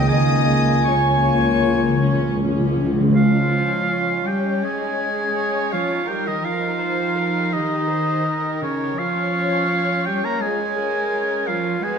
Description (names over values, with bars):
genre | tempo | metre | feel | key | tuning
cinematic, emotional film score for orchestra | 77-86 BPM | 4/4 | rubato | Db lydian | A4 = 440 Hz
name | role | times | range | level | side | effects
warm studio violin section | melody | 0.0-12.0 s | Db4 to Eb6 | -34 LUFS | left 2 dB | none
clear oboe | second line | 0.0-12.0 s | Db5 to Bb5 | -24 LUFS | right 1 dB | none
dark studio violin section | second line | 0.0-12.0 s | Cb4 to Eb5 | -28 LUFS | left 5 dB | none
mellow hollow small flute group | second line | 0.0-2.4 s | Db5 to Eb5 | -33 LUFS | equal | none
warm clarinet | second line | 0.0-12.0 s | Db4 to Ab5 | -26 LUFS | equal | none
warm studio viola section | accompaniment | 0.0-12.0 s | Bb3 to Db5 | -28 LUFS | equal | none
mellow French horn section | sustained chords | 0.0-2.8 s | Bb3 to F4 | -25 LUFS | left 4 dB | none
dark studio double bass section | bass | 0.0-2.9 s | Db2 | -23 LUFS | right 2 dB | none
warm studio cello section | bass | 0.0-12.0 s | Db3 to Bb3 | -27 LUFS | right 2 dB | none
timpani | percussion | 0.1-3.2 s | Db3 | -20 LUFS | equal | none
room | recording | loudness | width
wet recital hall reverb, RT60 1.8 s | faint mains hum | -18 LUFS | side -6 dB against mid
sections
0.0-3.2 A section; 3.2-12.0 B section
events
timpani fill 0.1-3.2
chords
0.1 Db6; 3.2 Dbsus2; 6.1 Eb7; 9.0 Bbm7/F